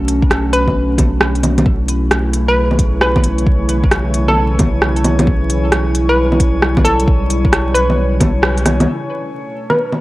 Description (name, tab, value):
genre	future garage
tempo	133 BPM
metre	4/4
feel	swing 64% on 16ths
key	unclear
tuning	A4 = 444 Hz
part	warbly tape-like pad	sustained chords	0.0-10.0 s	B2 to F#4	-20 LUFS	right 1 dB	chorus, built-in reverb, sidechain pumping
part	warm sub bass	bass	0.0-8.9 s	B1	-17 LUFS	equal	sidechain pumping
part	organic electronic drum kit	drums	0.1-10.0 s	bongos, hi-hat, rim click	-16 LUFS	equal	none
part	electronic kick drum	drums	0.2-8.3 s	none	-15 LUFS	equal	none
part	hollow square pluck	melody	0.5-10.0 s	A4 to B4	-19 LUFS	equal	chorus, tape echo
part	drifting glass-harmonics texture	texture	2.5-10.0 s	A3 to C#5	-26 LUFS	left 2 dB	chorus, built-in reverb
room	light reverb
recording	dry, gritty hardware recording, transformer saturation, vinyl crackle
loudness	-12 LUFS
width	side -18 dB against mid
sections	0.0-8.9 A section; 8.9-10.0 B section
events	band accent 8.4; filter sweep on ambient pad 8.9-10.0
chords	0.0 Bm7; 1.7 A/B; 8.9 Bm7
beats	0.31 0.76 1.21 | 1.66 2.11 2.56 3.01 | 3.46 3.92 4.37 4.82 | 5.27 5.72 6.17 6.62 | 7.07 7.53 7.98 8.43 | 8.88 9.33 9.78